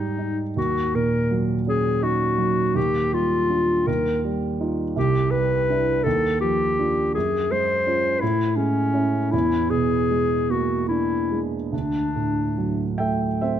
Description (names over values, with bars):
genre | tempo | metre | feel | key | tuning
classical, impressionist duo for clarinet and grand piano | 46-57 BPM (dotted quarters) | 6/8 | rubato | unclear | A4 = 440 Hz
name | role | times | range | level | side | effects
warm clarinet | melody | 0.0-13.0 s | C#4 to C5 | -22 LUFS | left 3 dB | none
dark baby grand piano | accompaniment | 0.0-13.6 s | C2 to G5 | -23 LUFS | right 3 dB | none
room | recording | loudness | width
moderate recital hall reverb, RT60 1.5 s | close, detailed microphones | -20 LUFS | side -10 dB against mid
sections
0.0-13.6 A section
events
none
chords
0.0 Ab5; 0.6 Ebm7; 2.8 G5/Eb; 3.9 Ebadd9; 5.0 Cmaj9; 6.1 Ebmaj9; 7.2 F#sus2; 8.2 Amaj7; 9.3 E7#11; 11.7 D9